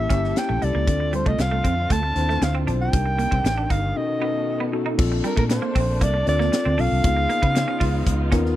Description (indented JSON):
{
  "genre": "polished 1980s jazz-funk pop",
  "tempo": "117 BPM",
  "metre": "4/4",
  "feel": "straight",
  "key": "Bb major",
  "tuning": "A4 = 439 Hz",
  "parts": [
    { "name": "mellow soprano saxophone", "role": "melody", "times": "0.0-8.3 s", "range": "Bb4 to A5", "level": "-25 LUFS", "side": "equal", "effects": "none" },
    { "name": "tine electric piano", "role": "accompaniment", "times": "0.0-8.6 s", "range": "B2 to C5", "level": "-27 LUFS", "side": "left 4 dB", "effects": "overdrive, wide subtle chorus" },
    { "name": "warm studio string section", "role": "sustained chords", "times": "0.0-8.6 s", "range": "C3 to A4", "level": "-35 LUFS", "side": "right 1 dB", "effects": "none" },
    { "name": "vintage muted fingered electric bass", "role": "bass", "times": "0.0-8.5 s", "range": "G1 to Db3", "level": "-23 LUFS", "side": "equal", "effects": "none" },
    { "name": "electric guitar at the edge of break-up", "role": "riff", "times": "0.1-8.4 s", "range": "G3 to F4", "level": "-29 LUFS", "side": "right 5 dB", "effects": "analog chorus" },
    { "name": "crisp fusion drum kit", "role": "drums", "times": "0.1-8.5 s", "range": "crash cymbal, hi-hat, kick drum, snare drum", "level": "-24 LUFS", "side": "equal", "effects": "none" }
  ],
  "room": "little or no reverb",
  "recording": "none",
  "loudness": "-19 LUFS",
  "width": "side -14 dB against mid",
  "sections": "0.0-5.0 A section; 5.0-8.6 B section",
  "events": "break 4.0-5.0",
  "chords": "0.0 A7b9; 0.9 Dm7; 2.9 Cm7; 4.0 B9; 5.0 Bbmaj9; 7.0 Db9"
}